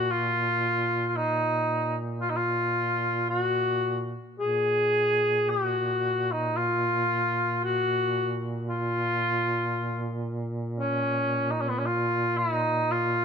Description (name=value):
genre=caucasian folk, Caucasian lament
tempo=56 BPM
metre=3/4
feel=rubato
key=Bb minor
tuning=A4 = 441 Hz
part: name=mellow cor anglais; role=melody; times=0.0-13.2 s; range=Cb4 to Ab4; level=-25 LUFS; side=left 1 dB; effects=none
part: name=mellow duduk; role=drone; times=0.0-13.2 s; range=Bb2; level=-31 LUFS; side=right 1 dB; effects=none
room=light reverb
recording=close, detailed microphones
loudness=-24 LUFS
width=side -6 dB against mid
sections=0.0-13.2 A section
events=none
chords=none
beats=0.09 | 1.14 2.21 3.30 | 4.39 5.49 6.58 | 7.65 8.70 9.75 | 10.81 11.87 12.94